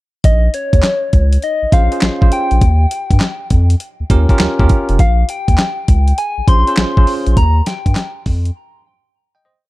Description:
R&B, new jack swing; 101 BPM; 4/4; swing 65% on 16ths; Bb dorian; A4 = 440 Hz
soft struck synth lead; melody; 0.2-8.2 s; Db5 to C6; -19 LUFS; left 2 dB; chorus
round analog bass; bass; 0.2-8.5 s; F1 to G2; -13 LUFS; equal
dusty soul sampler-style drum kit; drums; 0.2-8.6 s; handclaps, hi-hat, kick drum, snare drum; -13 LUFS; equal
bell-like tine electric piano; accompaniment; 1.7-9.7 s; Db4 to G5; -20 LUFS; right 2 dB; medium stereo tremolo
little or no reverb; dark, warm production; -11 LUFS; side -18 dB against mid
0.2-9.7 verse
fade-out 7.4-9.7; break 8.6-9.7
0.2 Bbm7; 2.6 Eb7; 5.0 Bbm7; 7.4 Eb

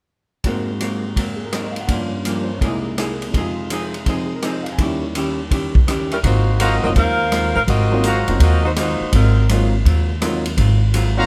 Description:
jazz, big band swing; 166 BPM; 4/4; swing 66% on 8ths; Ab mixolydian; A4 = 440 Hz
vintage hollow-body jazz guitar; accompaniment; 0.4-11.2 s; G2 to G#4; -28 LUFS; equal
swinging big-band drum kit; drums; 0.4-11.0 s; hi-hat, kick drum, ride cymbal, rim click; -24 LUFS; equal
clear grand piano; accompaniment; 0.5-11.3 s; C2 to Ab5; -27 LUFS; equal
warm saxophone section; melody; 6.1-9.5 s; Gb3 to F5; -22 LUFS; equal
upright bass; bass; 6.2-11.3 s; Gb1 to Eb2; -19 LUFS; equal
brilliant trumpet section; stabs; 6.6-8.6, 11.2-11.3 s; Gb4 to Bb5; -24 LUFS; equal
light reverb; close, detailed microphones; -18 LUFS; mono
0.4-6.2 A section; 6.2-11.3 B section
0.4 Ab9; 1.9 Gm7b5; 2.6 C7alt; 3.3 Fm7; 4.8 Eb7b9; 6.2 Ab13

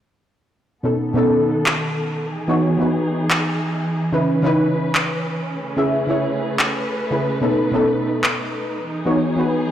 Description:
future bass; 146 BPM; 4/4; half-time; E major; A4 = 440 Hz
soft round pluck; accompaniment; 0.8-9.7 s; B2 to E5; -19 LUFS; equal; ensemble chorus, tape echo
dark chamber string section; sustained chords; 0.8-9.7 s; C#3 to B4; -24 LUFS; equal; low-pass filter
electronic handclaps; drums; 1.7-8.3 s; -23 LUFS; equal
moderate huge ambient reverb, RT60 4.2 s; played on a big sound system in a bare room, large studio reverb; -17 LUFS; side -10 dB against mid
0.8-9.7 A section
filter sweep on string section 0.8-9.7
0.8 B7; 2.3 Emaj7; 4.1 C#m7; 5.6 Amaj9/C#; 7.4 B7; 8.9 Emaj7

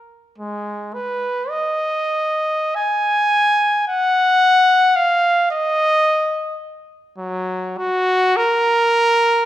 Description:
classical, free, expressive piece for unaccompanied trumpet; 44-56 BPM; 3/4; rubato; Eb minor; A4 = 440 Hz
clear trumpet; solo; 0.4-9.5 s; Gb3 to Ab5; -15 LUFS; equal
wet recital hall reverb, RT60 1.6 s; minimal, uncompressed stereo recording; -15 LUFS; side -13 dB against mid
0.0-9.5 A section

